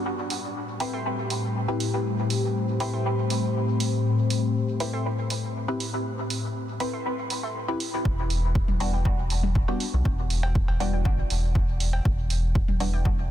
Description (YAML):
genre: dub techno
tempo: 120 BPM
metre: 4/4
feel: straight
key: E minor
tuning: A4 = 441 Hz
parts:
  - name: dark analog pad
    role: sustained chords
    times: 0.1-8.0 s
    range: A3 to C5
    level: -26 LUFS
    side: left 2 dB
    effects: chorus, phaser, sidechain pumping
  - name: electronic hi-hat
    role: drums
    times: 0.3-12.9 s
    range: none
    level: -34 LUFS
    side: right 5 dB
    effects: none
  - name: warbly dusty pluck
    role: riff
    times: 0.8-13.1 s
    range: E4 to C6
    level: -40 LUFS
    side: right 2 dB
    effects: chorus, phaser, sidechain pumping, dub echo
  - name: filtered dub chord stab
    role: stabs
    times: 0.8-13.0 s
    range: G3 to B4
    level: -31 LUFS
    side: left 1 dB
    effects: chorus, phaser, sidechain pumping, dub echo
  - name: soft dub sub bass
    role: bass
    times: 8.1-13.3 s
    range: E1 to B1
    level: -25 LUFS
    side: equal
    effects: tube saturation, sidechain pumping
  - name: electronic kick drum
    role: drums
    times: 8.1-13.2 s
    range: none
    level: -24 LUFS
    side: equal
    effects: none
  - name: electronic toms and cowbell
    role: percussion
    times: 8.7-12.8 s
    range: none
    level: -35 LUFS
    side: left 5 dB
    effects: sidechain pumping on toms, sidechain pumping on perc, dub echo
room: light reverb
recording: dense, heavily limited modern master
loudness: -23 LUFS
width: side -12 dB against mid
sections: 0.0-8.1 A section; 8.1-13.3 B section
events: none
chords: 0.1 Am7; 8.1 Em7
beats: | 0.05 0.55 1.05 1.55 | 2.05 2.55 3.05 3.55 | 4.05 4.55 5.05 5.55 | 6.05 6.55 7.05 7.55 | 8.05 8.55 9.05 9.55 | 10.05 10.55 11.05 11.55 | 12.05 12.55 13.05